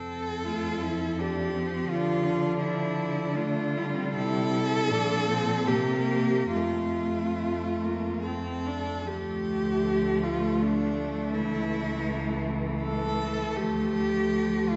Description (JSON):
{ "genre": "classical, lyrical piece for cello ensemble", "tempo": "66-84 BPM", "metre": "3/4", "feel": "rubato", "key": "F major, D minor from 9.1 s", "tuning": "A4 = 435 Hz", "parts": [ { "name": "rich cello", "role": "melody", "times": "0.0-14.8 s", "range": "C4 to A4", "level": "-32 LUFS", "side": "equal", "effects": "none" }, { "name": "rich cello", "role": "second line", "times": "0.0-14.8 s", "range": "A3 to F4", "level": "-36 LUFS", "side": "equal", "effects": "none" }, { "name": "rich cello", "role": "bass", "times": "0.0-14.8 s", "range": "C#2 to D3", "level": "-33 LUFS", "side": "equal", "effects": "none" }, { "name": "rich cello", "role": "accompaniment", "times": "0.4-14.8 s", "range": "E3 to D4", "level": "-36 LUFS", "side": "equal", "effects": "none" } ], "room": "wet church reverb, RT60 2.9 s", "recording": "recorded in a church or concert hall, nothing above 8.0 kHz", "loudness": "-28 LUFS", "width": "mono", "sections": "0.0-9.1 A section; 9.1-14.8 B section", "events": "none", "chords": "0.0 F; 1.9 Dm; 4.2 Am/C; 4.9 Bbmaj7; 5.7 C5; 6.5 F; 9.1 Dm; 11.4 A/C#; 13.6 Dm" }